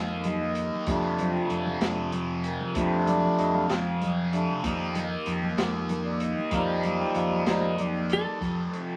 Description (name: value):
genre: psychedelic rock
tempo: 64 BPM (dotted quarters)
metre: 6/8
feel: straight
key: F mixolydian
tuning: A4 = 441 Hz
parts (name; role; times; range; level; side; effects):
- hand-pumped harmonium; sustained chords; 0.0-8.4 s; F3 to G5; -31 LUFS; equal; none
- thick fuzz guitar; riff; 0.0-9.0 s; F2 to Eb4; -32 LUFS; equal; distortion, phaser
- growling picked electric bass; bass; 0.0-8.7 s; F2; -34 LUFS; equal; overdrive
- vintage drum kit; drums; 0.2-8.9 s; hi-hat, kick drum, snare drum; -35 LUFS; equal; none
- congas; percussion; 0.3-8.4 s; none; -39 LUFS; equal; none
- clean lap steel guitar; melody; 8.1-9.0 s; A4; -33 LUFS; equal; none
room: moderate studio reverb, RT60 0.7 s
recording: vinyl crackle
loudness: -27 LUFS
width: mono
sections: 0.0-8.4 A section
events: harmonium solo 0.0-8.4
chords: 0.0 Ebsus2/F; 0.9 F6; 4.6 Ebadd9/F; 8.4 F